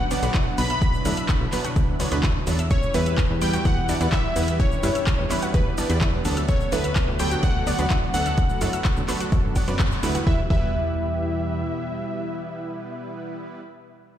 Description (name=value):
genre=progressive house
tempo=127 BPM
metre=4/4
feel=straight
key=E dorian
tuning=A4 = 440 Hz
part: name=plucky unison lead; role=melody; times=0.0-13.6 s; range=B4 to B5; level=-29 LUFS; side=left 1 dB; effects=sidechain pumping, dub echo
part: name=soft synth bell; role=second line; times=0.0-13.6 s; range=B4 to B5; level=-38 LUFS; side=right 1 dB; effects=none
part: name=warm analog pad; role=sustained chords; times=0.0-13.4 s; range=B2 to G4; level=-32 LUFS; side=equal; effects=chorus, sidechain pumping
part: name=supersaw stab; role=stabs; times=0.0-13.6 s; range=B2 to D5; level=-30 LUFS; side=right 2 dB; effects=sidechain pumping, dub echo
part: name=tight sequencer bass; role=bass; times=0.0-11.6 s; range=B1 to G2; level=-25 LUFS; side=equal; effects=tube saturation, sidechain pumping
part: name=analog pluck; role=arpeggios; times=0.1-10.6 s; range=B3 to E6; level=-34 LUFS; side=equal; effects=chorus, cassette tape, sidechain pumping, dub echo
part: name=deep house drum kit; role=drums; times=0.1-10.2 s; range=handclaps, hi-hat, shaker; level=-32 LUFS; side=left 1 dB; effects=overdrive
part: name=electronic kick drum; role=drums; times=0.3-10.6 s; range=none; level=-22 LUFS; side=equal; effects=overdrive
room=light reverb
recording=played on a big sound system in a bare room, large studio reverb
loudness=-20 LUFS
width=side -11 dB against mid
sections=0.0-10.3 A section; 10.3-14.0 B section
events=drop 0.0-10.3; band accent 9.8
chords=0.0 Bm; 2.7 D6; 10.3 Em